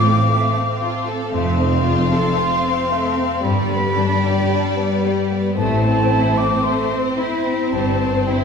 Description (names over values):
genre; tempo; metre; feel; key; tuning
classical, slow romantic movement for symphony orchestra; 56 BPM; 4/4; rubato; unclear; A4 = 436 Hz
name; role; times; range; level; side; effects
rich studio violin section; melody; 0.0-8.4 s; C5 to F5; -27 LUFS; left 3 dB; none
concert flute; second line; 0.0-8.4 s; G5 to D6; -22 LUFS; left 1 dB; none
rich studio violin section; second line; 0.0-8.4 s; G3 to A4; -25 LUFS; left 2 dB; none
rich studio viola section; accompaniment; 0.0-8.4 s; G3 to C4; -25 LUFS; right 2 dB; none
concert harp; arpeggios; 0.0-8.4 s; F2 to F5; -24 LUFS; left 5 dB; none
clear studio cello section; bass; 0.0-8.4 s; F2 to A2; -24 LUFS; right 2 dB; none
rich studio double bass section; bass; 0.0-8.4 s; F1 to A1; -23 LUFS; right 2 dB; none
room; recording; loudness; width
wet recital hall reverb, RT60 1.5 s; heard from further back in the room; -16 LUFS; side -6 dB against mid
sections
0.0-8.4 A section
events
none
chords
0.0 F/A; 1.3 F; 3.4 G; 5.6 Am; 7.7 C/G